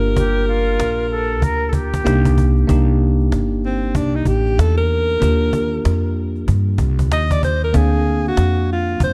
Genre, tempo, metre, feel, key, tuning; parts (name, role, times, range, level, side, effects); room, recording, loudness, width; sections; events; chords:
hip hop, jazz-hop; 95 BPM; 4/4; swing 60% on 16ths; C dorian; A4 = 439 Hz
clear alto saxophone; melody; 0.0-9.1 s; C4 to Eb5; -23 LUFS; equal; delay
bell-like tine electric piano; accompaniment; 0.0-9.1 s; Bb3 to E#5; -25 LUFS; equal
upright bass; bass; 0.0-9.1 s; G1 to G2; -20 LUFS; equal
cajon; drums; 0.0-9.1 s; -25 LUFS; equal
breathy silver concert flute; second line; 0.2-2.7 s; F4 to Bb4; -26 LUFS; equal
light reverb; dark, warm production; -17 LUFS; mono
0.0-2.7 A section; 2.7-9.1 B section
alto saxophone solo 2.7-9.1
0.0 Gm7; 2.1 Cm7; 5.2 Ebmaj9; 7.7 D7alt